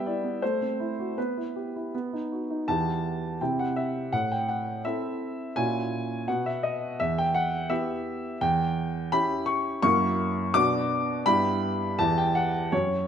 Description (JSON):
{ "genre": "classical-period piano sonatina", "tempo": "83 BPM", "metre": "2/4", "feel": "straight", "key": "E minor", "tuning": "A4 = 440 Hz", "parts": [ { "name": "warm baby grand piano", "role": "solo", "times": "0.0-13.1 s", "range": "E2 to D6", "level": "-25 LUFS", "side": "equal", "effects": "none" } ], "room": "wet recital hall reverb, RT60 1.4 s", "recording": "none", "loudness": "-25 LUFS", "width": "side -8 dB against mid", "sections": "0.0-2.7 A section; 2.7-13.1 B section", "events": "none", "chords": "0.4 F#m7b5/A; 1.2 Em/B; 1.9 B; 2.7 Em; 3.4 C; 4.1 Am; 5.6 F#7/A#; 6.3 B; 7.0 Em; 8.4 C#dim/E; 9.8 F#7; 10.5 Bm; 11.3 Em/G; 12.0 Em", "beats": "0.42 | 1.17 1.93 | 2.68 3.40 | 4.12 4.84 | 5.56 6.28 | 7.00 7.71 | 8.41 9.12 | 9.83 10.54 | 11.26 11.98 | 12.72" }